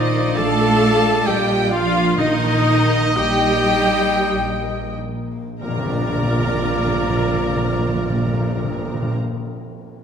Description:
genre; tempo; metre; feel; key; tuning
classical, slow romantic movement for symphony orchestra; 43-68 BPM; 3/4; rubato; Bb major; A4 = 440 Hz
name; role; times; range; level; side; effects
warm symphonic violin section; melody; 0.0-9.2 s; Eb5 to Bb5; -27 LUFS; left 2 dB; none
clear oboe; second line; 0.0-9.2 s; Bb4 to A5; -29 LUFS; equal; none
mellow hollow flute section; second line; 0.0-9.2 s; D5 to A5; -28 LUFS; left 1 dB; none
rich chamber violin section; second line; 0.0-9.2 s; Bb4 to Bb5; -30 LUFS; equal; none
warm clarinet; second line; 0.0-9.2 s; Eb4 to Bb4; -28 LUFS; equal; none
rich studio viola section; accompaniment; 0.0-9.2 s; Eb4 to Bb4; -24 LUFS; equal; none
warm French horn section; sustained chords; 0.0-9.2 s; Bb3 to F4; -27 LUFS; equal; none
concert harp; arpeggios; 0.0-9.5 s; Bb2 to Bb5; -29 LUFS; left 6 dB; none
clear trumpet; stabs; 0.0-9.2 s; D5 to Eb5; -27 LUFS; right 1 dB; none
dark symphonic cello section; bass; 0.0-9.2 s; Eb3 to Bb3; -25 LUFS; right 3 dB; none
rich symphonic double bass section; bass; 0.0-9.2 s; Bb1; -25 LUFS; right 2 dB; none
timpani; percussion; 0.0-9.2 s; Bb2; -24 LUFS; equal; none
tam-tam; percussion; 5.6-9.2 s; none; -31 LUFS; left 2 dB; none
room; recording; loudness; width
wet scoring stage reverb, RT60 1.8 s; none; -16 LUFS; side -7 dB against mid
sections
0.0-5.6 A section; 5.6-9.5 B section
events
slowing down 0.0-5.6; band accent 5.6-6.9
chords
0.0 Bb; 2.2 Eb/Bb; 5.6 Bb

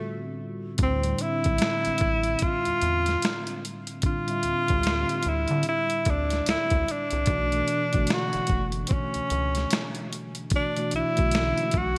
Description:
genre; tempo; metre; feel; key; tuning
R&B, neo-soul; 74 BPM; 4/4; swing 62% on 16ths; unclear; A4 = 440 Hz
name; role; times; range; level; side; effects
breathy tenor saxophone; melody; 0.0-12.0 s; A3 to F#4; -29 LUFS; equal; none
mellow tine electric piano; accompaniment; 0.0-12.0 s; A2 to E5; -34 LUFS; equal; analog chorus
rubbery square bass; bass; 0.8-12.0 s; F#1 to D3; -32 LUFS; equal; none
dusty soul sampler-style drum kit; drums; 0.8-12.0 s; hi-hat, kick drum, snare drum; -30 LUFS; equal; gated reverb
room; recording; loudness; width
light reverb; bright 1980s-style digital production; -26 LUFS; mono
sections
0.8-12.0 A section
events
break 0.0-0.8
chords
0.0 Am9; 0.8 Dm9; 7.3 Bm9

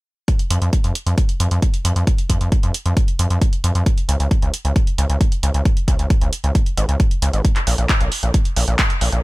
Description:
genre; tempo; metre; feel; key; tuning
uplifting trance; 134 BPM; 4/4; straight; unclear; A4 = 440 Hz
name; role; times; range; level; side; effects
electronic kick drum; drums; 0.3-8.9 s; none; -17 LUFS; equal; none
punchy analog drum machine; drums; 0.3-9.2 s; handclaps, hi-hat; -24 LUFS; right 1 dB; none
gritty driven synth bass; bass; 0.5-9.2 s; Ab1 to F2; -17 LUFS; equal; sidechain pumping
room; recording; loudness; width
little or no reverb; none; -16 LUFS; side -21 dB against mid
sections
0.3-9.2 A section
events
none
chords
none

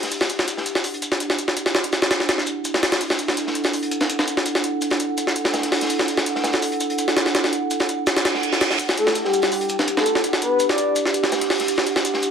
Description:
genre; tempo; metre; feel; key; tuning
drum and bass, jungle; 166 BPM; 4/4; straight; E minor; A4 = 440 Hz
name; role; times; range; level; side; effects
warbly tape-like pad; sustained chords; 0.0-12.3 s; D4 to F#5; -24 LUFS; right 2 dB; chorus, built-in reverb
crunchy breakbeat drum kit; drums; 0.0-12.3 s; hi-hat, shaker, snare drum; -29 LUFS; left 1 dB; high-pass filter on hats, small room ambience, high-pass filter on snare, high-pass filter on perc, high-pass filter on room
jungle sampler-style drum kit; drums; 0.0-12.3 s; hi-hat, snare drum; -21 LUFS; equal; high-pass filter on hats, small room ambience, high-pass filter on kick, high-pass filter on snare
reverse cymbal; sound effects; 8.2-8.8 s; none; -26 LUFS; right 5 dB; none
breathy flute-like synth lead; melody; 9.0-11.0 s; G4 to D5; -21 LUFS; left 3 dB; lush chorus, dub echo
room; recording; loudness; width
moderate plate reverb, RT60 1.1 s, small room ambience; vinyl crackle; -18 LUFS; side -7 dB against mid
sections
0.0-12.3 A section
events
filter sweep on ambient pad 0.0-12.3; reverse cymbal 8.2-8.8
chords
0.0 Em9

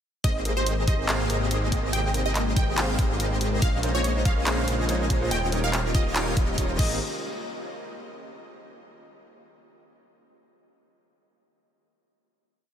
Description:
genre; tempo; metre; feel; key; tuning
future bass; 142 BPM; 4/4; swing 54% on 16ths, half-time; Ab major; A4 = 442 Hz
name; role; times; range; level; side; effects
wide unison pluck; melody; 0.2-6.9 s; C5 to G5; -32 LUFS; right 1 dB; phaser, sidechain pumping, diffuse ambient delay
airy breathy pad; sustained chords; 0.6-7.0 s; C3 to G5; -37 LUFS; left 2 dB; chorus, sidechain pumping
airy dreamy lead; arpeggios; 0.2-6.9 s; Eb5 to F5; -39 LUFS; equal; chorus, sidechain pumping, diffuse ambient delay
soft round pluck; arpeggios; 0.2-7.0 s; F4 to F5; -40 LUFS; right 3 dB; none
supersaw chords; riff; 0.2-7.0 s; Bb3 to F5; -32 LUFS; equal; ensemble chorus, sidechain pumping, diffuse ambient delay
wide detuned saw bass; bass; 0.2-7.0 s; Eb1 to Bb1; -28 LUFS; equal; chorus, sidechain pumping
dubstep drum kit; drums; 0.2-6.9 s; crash cymbal, handclaps, hi-hat, ride cymbal; -31 LUFS; equal; none
electronic kick drum; drums; 0.2-6.9 s; none; -24 LUFS; equal; none
clear concert grand piano; accompaniment; 3.8-7.0 s; G3 to Db5; -35 LUFS; right 2 dB; none
room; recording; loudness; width
moderate huge ambient reverb, RT60 6.2 s; dreamy mix soaked in reverb; -22 LUFS; side -9 dB against mid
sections
0.2-7.0 drop; 7.0-8.7 final hit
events
drop 0.2-7.0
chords
0.2 Abmaj9; 3.6 Bbm11; 5.3 Eb9; 6.8 Abmaj9; 7.0 N.C.

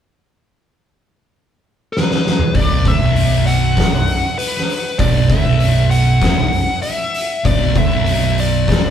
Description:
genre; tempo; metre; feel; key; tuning
stoner and doom metal; 98 BPM; 4/4; straight; B minor; A4 = 444 Hz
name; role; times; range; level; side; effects
fuzz lead guitar; melody; 1.9-8.9 s; B4 to F#5; -20 LUFS; left 2 dB; wah, distortion, tape echo
oversized low-tuned drum kit; drums; 2.0-8.8 s; hi-hat, kick drum, snare drum, toms; -17 LUFS; equal; none
thick fuzz guitar; riff; 2.5-8.9 s; B1 to E2; -21 LUFS; left 6 dB; distortion
thick fuzz guitar; riff; 2.6-8.9 s; B1 to E2; -18 LUFS; right 6 dB; distortion
overdriven picked electric bass; bass; 2.6-8.9 s; B0 to E1; -21 LUFS; left 1 dB; tube saturation
room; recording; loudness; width
moderate large studio reverb, RT60 1.1 s; band playing live in one room; -13 LUFS; side -9 dB against mid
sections
0.1-2.5 A section; 2.5-8.9 B section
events
drum fill 1.9-2.5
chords
0.1 N.C.; 2.5 Bm

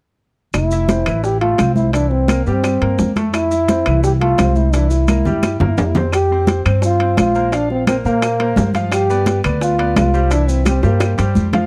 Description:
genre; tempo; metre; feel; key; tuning
latin, salsa; 172 BPM; 4/4; straight; F major; A4 = 440 Hz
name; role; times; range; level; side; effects
upright bass; bass; 0.5-11.7 s; F1 to Bb2; -20 LUFS; equal; none
bongos; percussion; 0.5-11.6 s; none; -26 LUFS; equal; none
claves; percussion; 0.5-11.2 s; none; -33 LUFS; equal; none
congas; percussion; 0.5-11.7 s; none; -22 LUFS; equal; none
maracas; percussion; 0.5-11.7 s; none; -39 LUFS; equal; none
timbales; percussion; 0.5-11.7 s; none; -28 LUFS; equal; none
mellow trombone; melody; 0.6-11.2 s; Bb3 to G4; -20 LUFS; equal; none
bright concert grand piano; accompaniment; 0.7-11.7 s; E3 to F5; -26 LUFS; equal; none
room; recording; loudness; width
small room ambience; dry, close 1970s-style studio recording; -16 LUFS; mono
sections
0.5-6.1 A section; 6.1-11.7 B section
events
drum fill 5.1-6.1, 10.8-11.7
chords
0.5 Fmaj7; 1.9 C7; 3.3 Fmaj7; 4.7 C7; 6.1 Bbsus2; 8.9 G7; 10.3 C

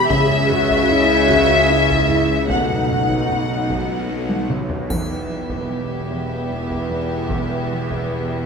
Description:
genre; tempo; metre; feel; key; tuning
cinematic, suspense film score; 75 BPM; 3/4; straight; E minor from 4.9 s; A4 = 439 Hz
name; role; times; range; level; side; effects
dark studio violin section; melody; 0.0-8.5 s; E5 to F#5; -21 LUFS; left 3 dB; none
warm symphonic violin section; second line; 0.0-8.5 s; G4 to F#5; -26 LUFS; left 1 dB; none
dark symphonic viola section; accompaniment; 0.0-8.5 s; B3 to G#4; -25 LUFS; right 2 dB; none
warm symphonic cello section; bass; 0.0-8.5 s; E2 to C#3; -25 LUFS; right 2 dB; none
warm symphonic double bass section; bass; 0.0-8.5 s; E1 to C#2; -27 LUFS; right 3 dB; none
bowed-like drone; drone; 0.0-8.5 s; B1 to E2; -28 LUFS; equal; built-in reverb, phaser
dark French horn section; sustained chords; 0.1-4.6 s; G#3 to D#4; -23 LUFS; left 6 dB; none
warm chamber cello section; riff; 0.1-8.3 s; E2 to C#4; -30 LUFS; right 2 dB; none
taiko ensemble; drums; 0.1-8.5 s; none; -28 LUFS; equal; none
triangle; percussion; 4.9-6.5 s; none; -39 LUFS; equal; none
room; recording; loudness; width
wet scoring stage reverb, RT60 1.8 s; none; -16 LUFS; side -5 dB against mid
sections
0.0-4.9 A section; 4.9-8.5 B section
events
drum fill 4.3-4.9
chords
0.1 C#m; 2.5 B7; 4.9 Em

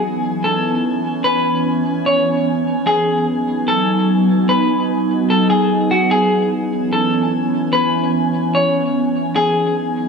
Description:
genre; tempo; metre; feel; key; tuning
hip hop; 148 BPM; 4/4; half-time; C# minor; A4 = 443 Hz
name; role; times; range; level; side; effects
glassy FM pad; sustained chords; 0.0-10.1 s; E3 to G#5; -17 LUFS; right 1 dB; ensemble chorus, built-in reverb
semi-hollow electric guitar; melody; 0.4-9.7 s; F#4 to C#5; -18 LUFS; left 1 dB; spring reverb, ping-pong delay
room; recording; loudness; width
light reverb; dark, warm production; -14 LUFS; side -5 dB against mid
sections
0.0-10.1 A section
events
none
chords
0.0 C#m7; 2.9 G#m7; 6.1 C#m7; 9.4 G#m7

